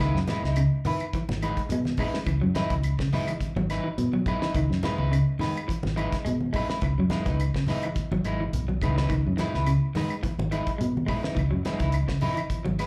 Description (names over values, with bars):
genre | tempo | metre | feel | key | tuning
afrobeat | 106 BPM | 4/4 | swing 54% on 16ths | C# minor | A4 = 440 Hz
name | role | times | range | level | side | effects
electric guitar at the edge of break-up | arpeggios | 0.0-12.8 s | C#3 to G#3 | -33 LUFS | equal | tape echo, slapback echo
electric guitar at the edge of break-up | stabs | 0.0-12.9 s | G#3 to B4 | -33 LUFS | equal | subtle chorus, slapback echo
fingered electric bass | bass | 0.0-12.9 s | G#1 to B2 | -28 LUFS | equal | none
damped 70s drum kit | drums | 0.0-12.9 s | hi-hat, kick drum, snare drum | -35 LUFS | equal | none
claves | percussion | 0.0-12.9 s | none | -44 LUFS | equal | slapback echo
congas | percussion | 0.3-12.8 s | none | -35 LUFS | equal | none
room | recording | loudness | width
little or no reverb | live gig heard through the venue's PA, club reverb | -26 LUFS | mono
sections
0.0-12.9 A section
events
none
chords
0.0 C#m9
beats
| 0.00 0.57 1.14 1.71 | 2.27 2.84 3.41 3.98 | 4.55 5.12 5.69 6.26 | 6.83 7.39 7.96 8.53 | 9.10 9.67 10.23 10.80 | 11.37 11.94 12.51